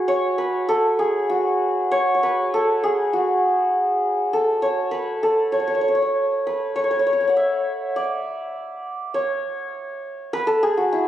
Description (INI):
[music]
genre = indian classical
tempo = 100 BPM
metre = 5/4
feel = straight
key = unclear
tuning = A4 = 439 Hz
[part]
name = santur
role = solo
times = 0.0-11.1 s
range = E4 to F#5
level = -19 LUFS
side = equal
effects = none
[sound]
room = moderate concert hall reverb, RT60 2.2 s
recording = recorded on a phone in the room, club reverb, compression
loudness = -19 LUFS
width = side -12 dB against mid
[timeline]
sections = 0.0-3.1 A section; 3.1-11.1 B section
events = speeding up 0.0-11.1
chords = none